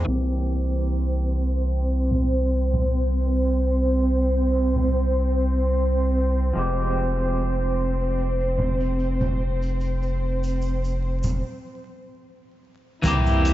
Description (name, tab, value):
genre	trip hop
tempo	74 BPM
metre	4/4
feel	swing 55% on 16ths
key	F harmonic minor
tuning	A4 = 437 Hz
part	electric guitar at the edge of break-up	accompaniment	0.0-13.5 s	E3 to G4	-30 LUFS	equal	tremolo, tape echo
part	dark studio violin section	sustained chords	0.0-13.5 s	C4 to E5	-26 LUFS	right 1 dB	low-pass filter
part	round analog bass	bass	0.0-13.5 s	F1 to C2	-23 LUFS	equal	tube saturation
part	tube shaker and congas	percussion	0.1-13.4 s	none	-31 LUFS	right 1 dB	none
part	crunchy breakbeat drum kit	drums	13.0-13.5 s	hi-hat, kick drum	-26 LUFS	equal	none
part	sub drop	sound effects	13.0-13.5 s	none	-27 LUFS	equal	none
room	moderate huge ambient reverb, RT60 4.0 s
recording	dreamy mix soaked in reverb, vinyl crackle, low-pass filter, nothing above 7.7 kHz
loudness	-21 LUFS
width	side -14 dB against mid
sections	0.1-13.0 A section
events	filter sweep on violin section 0.1-13.0; filter sweep 0.1-13.0; break 11.4-13.0; impact 13.0-13.5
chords	0.1 C7; 6.6 Fmadd9